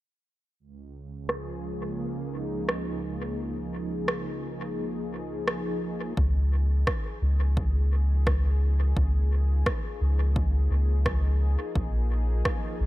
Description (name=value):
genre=ambient dub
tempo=86 BPM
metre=4/4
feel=swing 57% on 16ths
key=Db major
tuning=A4 = 441 Hz
part: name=warm analog pad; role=sustained chords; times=0.6-12.9 s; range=Db2 to Ab4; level=-34 LUFS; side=equal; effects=chorus, tremolo
part: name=electronic rim click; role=drums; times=1.3-12.6 s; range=none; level=-32 LUFS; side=right 1 dB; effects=overdrive, low-pass filter on snare, dub echo
part: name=soft dub sub bass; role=bass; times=6.2-12.9 s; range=Bb1 to Db2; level=-23 LUFS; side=equal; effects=none
part: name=electronic kick drum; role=drums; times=6.2-12.6 s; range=none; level=-29 LUFS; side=equal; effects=overdrive
room=digital ambience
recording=none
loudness=-25 LUFS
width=side -17 dB against mid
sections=0.6-6.2 A section; 6.2-12.9 B section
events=filter sweep on drum 0.6-6.2; fade-in on analog synth pad 6.2-12.9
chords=0.6 Db; 11.8 Bb5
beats=| 0.59 1.29 1.99 2.69 | 3.38 4.08 4.78 5.48 | 6.17 6.87 7.57 8.27 | 8.96 9.66 10.36 11.06 | 11.76 12.45